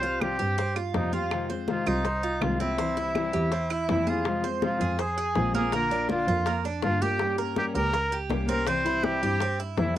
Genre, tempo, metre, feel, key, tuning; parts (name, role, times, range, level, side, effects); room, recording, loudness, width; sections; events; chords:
latin, Cuban son and guajira; 163 BPM; 4/4; straight; F minor; A4 = 440 Hz
breathy trumpet; melody; 0.0-10.0 s; Eb4 to C5; -28 LUFS; equal
fingerpicked steel-string acoustic guitar; accompaniment; 0.0-10.0 s; C3 to G4; -31 LUFS; left 5 dB; cassette tape
Cuban tres; arpeggios; 0.0-10.0 s; Bb3 to C5; -32 LUFS; right 6 dB; cassette tape
rich double bass; bass; 0.0-10.0 s; Bb1 to G2; -31 LUFS; equal
bongos; percussion; 0.0-10.0 s; -34 LUFS; left 9 dB
congas; percussion; 0.0-10.0 s; -34 LUFS; equal
claves; percussion; 0.2-3.9 s; -35 LUFS; right 8 dB
moderate booth ambience, RT60 0.3 s; home recording on cassette; -24 LUFS; side -12 dB against mid
0.0-4.3 A section; 4.3-10.0 A section
0.0 Csus4; 1.3 Fm7; 2.8 C; 4.3 Fm; 5.7 Bb; 7.2 Gdim; 8.7 C